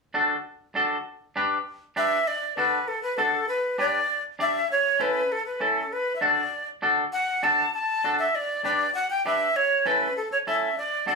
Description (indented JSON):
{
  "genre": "latin",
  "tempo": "198 BPM",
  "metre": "4/4",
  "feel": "straight",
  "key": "D major",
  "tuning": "A4 = 442 Hz",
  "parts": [
    { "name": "semi-hollow electric guitar", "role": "accompaniment", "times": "0.1-11.2 s", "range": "C#4 to D5", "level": "-24 LUFS", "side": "left 1 dB", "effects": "none" },
    { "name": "breathy bright jazz flute", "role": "melody", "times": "2.0-11.2 s", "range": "A4 to A5", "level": "-24 LUFS", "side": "equal", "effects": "none" }
  ],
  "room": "wet studio reverb, RT60 0.6 s",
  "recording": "heard from further back in the room, small room ambience",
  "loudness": "-22 LUFS",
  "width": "side -3 dB against mid",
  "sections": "0.0-2.3 A section; 2.3-11.2 B section",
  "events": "none",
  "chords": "0.0 D; 1.1 G; 2.3 D; 3.5 G; 4.7 A; 5.9 D; 8.3 G; 9.6 A",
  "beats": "0.15 0.45 0.76 | 1.06 1.36 1.67 1.97 | 2.27 2.58 2.88 3.19 | 3.49 3.79 4.10 4.40 | 4.71 5.01 5.31 5.62 | 5.92 6.22 6.53 6.83 | 7.13 7.44 7.74 8.04 | 8.35 8.65 8.95 9.26 | 9.56 9.86 10.17 10.47 | 10.77 11.08"
}